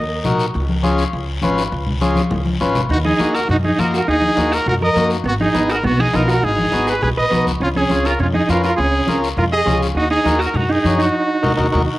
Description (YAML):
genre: latin, cumbia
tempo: 204 BPM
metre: 4/4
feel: straight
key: Eb minor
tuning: A4 = 438 Hz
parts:
  - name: bright trumpet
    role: melody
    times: 0.0-0.4, 2.9-12.0 s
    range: F4 to Eb5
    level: -20 LUFS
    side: equal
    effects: cassette tape, plate reverb
  - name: clean electric guitar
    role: second line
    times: 0.0-0.4, 2.9-12.0 s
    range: Cb4 to Cb5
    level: -20 LUFS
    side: right 2 dB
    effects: tremolo, cassette tape, plate reverb, analog delay
  - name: upright bass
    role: bass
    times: 0.0-11.8 s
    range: Ab1 to Gb2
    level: -22 LUFS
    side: equal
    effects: none
  - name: combo organ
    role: accompaniment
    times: 0.2-11.8 s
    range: Bb3 to Db5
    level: -22 LUFS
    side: left 2 dB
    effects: spring reverb, cassette tape, plate reverb
  - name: congas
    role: percussion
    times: 0.2-11.8 s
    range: none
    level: -22 LUFS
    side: left 2 dB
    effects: none
  - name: guiro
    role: percussion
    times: 0.2-11.8 s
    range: none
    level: -31 LUFS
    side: left 6 dB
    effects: none
room: moderate studio reverb, RT60 0.5 s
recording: home recording on cassette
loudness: -15 LUFS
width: side -17 dB against mid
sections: 0.0-2.9 A section; 2.9-12.0 B section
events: drum fill 2.2-2.9; band accent 11.1-12.0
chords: 0.0 Ebm; 0.5 Db; 2.9 Ebm; 5.3 Abm; 7.6 Db; 10.0 Ebm